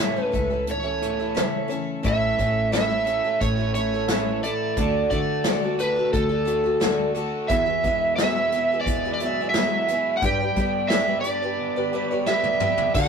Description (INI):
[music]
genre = folk rock and heartland rock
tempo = 88 BPM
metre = 4/4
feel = straight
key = unclear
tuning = A4 = 440 Hz
[part]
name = overdriven slide guitar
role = melody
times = 0.0-13.1 s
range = A4 to G5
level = -24 LUFS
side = right 3 dB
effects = none
[part]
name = picked twelve-string acoustic guitar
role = accompaniment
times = 0.0-13.1 s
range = A2 to E5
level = -27 LUFS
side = left 1 dB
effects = none
[part]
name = overdriven electric guitar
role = riff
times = 0.0-13.1 s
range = E2 to G4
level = -31 LUFS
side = left 1 dB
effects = none
[part]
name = fingered electric bass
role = bass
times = 0.3-13.1 s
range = A1 to G3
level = -30 LUFS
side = equal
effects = none
[part]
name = soft brush drum kit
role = drums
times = 0.3-13.1 s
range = crash cymbal, hi-hat, kick drum, snare drum, toms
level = -26 LUFS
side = left 1 dB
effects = none
[part]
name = warm grand piano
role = accompaniment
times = 2.0-13.1 s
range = E4 to E5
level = -39 LUFS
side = right 1 dB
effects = none
[sound]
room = moderate booth ambience, RT60 0.3 s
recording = rough rehearsal-room recording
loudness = -20 LUFS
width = side -6 dB against mid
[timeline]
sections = 0.0-2.0 A section; 2.0-12.9 B section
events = drum fill 12.3-12.9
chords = 0.0 A/C#; 2.0 A; 4.8 D; 7.5 Eadd9; 10.2 G